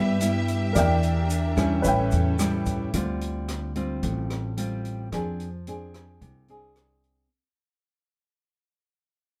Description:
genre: bossa nova.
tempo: 110 BPM.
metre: 4/4.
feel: straight.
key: unclear.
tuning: A4 = 442 Hz.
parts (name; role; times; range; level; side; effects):
nylon-string guitar; accompaniment; 0.0-7.3 s; G2 to Ab4; -30 LUFS; equal; none.
warm baby grand piano; accompaniment; 0.0-3.0 s; Bb4 to G5; -31 LUFS; equal; none.
warm symphonic string section; sustained chords; 0.0-2.9 s; C#4 to E5; -34 LUFS; equal; none.
upright bass; bass; 0.0-7.3 s; A1 to G2; -30 LUFS; equal; none.
open jazz drum kit; drums; 0.2-7.2 s; hi-hat, kick drum, rim click; -36 LUFS; equal; none.
tube shaker; percussion; 0.2-2.9 s; none; -42 LUFS; equal; none.
room: light reverb.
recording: none.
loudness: -25 LUFS.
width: mono.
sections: 0.0-2.9 A section; 2.9-7.3 B section.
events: fade-out 2.9-7.3.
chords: 0.0 Cmaj7 (rootless); 0.8 Em7b5; 1.8 A7; 2.9 Dm7; 5.1 Fm6.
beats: 0.20 | 0.75 1.30 1.84 2.39 | 2.94 3.48 4.03 4.57 | 5.12 5.67 6.21 6.76.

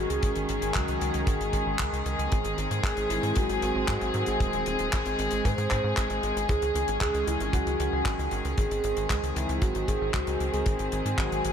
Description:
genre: italo disco.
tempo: 115 BPM.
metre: 4/4.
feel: straight.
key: unclear.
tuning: A4 = 440 Hz.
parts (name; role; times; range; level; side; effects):
soft octave-layered synth lead; melody; 0.0-11.5 s; E4 to B#4; -32 LUFS; right 1 dB; chorus, diffuse ambient delay.
warm studio string section; sustained chords; 0.0-11.5 s; D#3 to G#4; -29 LUFS; equal; none.
tight sequencer bass; bass; 0.0-11.5 s; D#1 to G#2; -32 LUFS; equal; none.
damped 70s drum kit; drums; 0.1-11.5 s; handclaps, hi-hat; -35 LUFS; left 1 dB; none.
kick drum; drums; 0.2-11.3 s; none; -28 LUFS; equal; none.
room: wet plate reverb, RT60 2.6 s.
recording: dreamy mix soaked in reverb.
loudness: -25 LUFS.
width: side -8 dB against mid.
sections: 0.0-11.5 A section.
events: none.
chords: 0.0 C#sus2; 2.3 G#; 6.5 C#sus2; 10.7 G#.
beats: | 0.23 0.75 1.27 1.80 | 2.32 2.84 3.36 3.88 | 4.40 4.93 5.45 5.97 | 6.49 7.01 7.54 8.06 | 8.58 9.10 9.62 10.14 | 10.66 11.19.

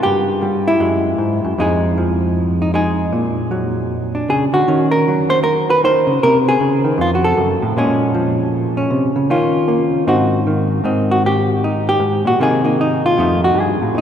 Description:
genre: solo jazz.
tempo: 155 BPM.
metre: 4/4.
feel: swing 63% on 8ths.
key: Ab major from 10.8 s.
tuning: A4 = 441 Hz.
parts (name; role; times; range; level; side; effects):
hollow-body jazz guitar; solo; 0.0-14.0 s; F2 to C5; -14 LUFS; equal; none.
room: wet cathedral reverb, RT60 6.1 s.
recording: recorded in a church or concert hall.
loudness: -14 LUFS.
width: side -9 dB against mid.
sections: 0.0-10.8 A section; 10.8-14.0 B section.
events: hollow-body jazz guitar solo 10.8-14.0.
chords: 0.0 N.C.; 0.8 Gbsus2; 1.6 Fm7; 3.1 Bb7alt; 4.7 Ebm7; 6.2 Bbm11/C; 7.0 F; 7.8 Bbm7; 9.3 Ebsus2; 10.1 Ab7; 10.8 Abmaj7; 12.4 Ab69/C; 13.2 F7.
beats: | 0.03 0.42 0.80 1.19 | 1.58 1.96 2.35 2.74 | 3.12 3.51 3.90 4.28 | 4.67 5.05 5.44 5.83 | 6.21 6.60 6.99 7.37 | 7.76 8.14 8.53 8.91 | 9.30 9.69 10.07 10.46 | 10.85 11.23 11.62 12.01 | 12.39 12.78 13.17 13.55 | 13.94.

